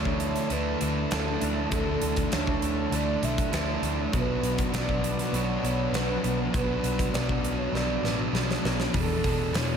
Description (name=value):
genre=rock, shoegaze and dream pop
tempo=100 BPM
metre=4/4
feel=straight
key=unclear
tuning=A4 = 440 Hz
part: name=mellow horn-like synth lead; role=melody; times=0.0-9.8 s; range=A4 to E5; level=-33 LUFS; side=right 2 dB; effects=chorus, analog delay
part: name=dark analog pad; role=sustained chords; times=0.0-8.9 s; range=B4 to A5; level=-40 LUFS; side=equal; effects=chorus
part: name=overdriven electric guitar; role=riff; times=0.0-9.8 s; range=B2 to G#4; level=-31 LUFS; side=right 12 dB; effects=reverse reverb
part: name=thick fuzz guitar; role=riff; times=0.0-9.8 s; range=E2 to D4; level=-31 LUFS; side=left 12 dB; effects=distortion, analog chorus
part: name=vintage muted picked electric bass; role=bass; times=0.0-9.8 s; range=E1 to D2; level=-31 LUFS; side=equal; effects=none
part: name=huge arena drum kit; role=drums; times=0.1-9.7 s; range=hi-hat, kick drum, snare drum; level=-31 LUFS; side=equal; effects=none
room=light reverb, small room ambience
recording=none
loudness=-24 LUFS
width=side -7 dB against mid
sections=0.0-8.9 A section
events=drum fill 7.7-8.9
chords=0.0 Dsus2; 4.1 Bm; 8.9 E7sus4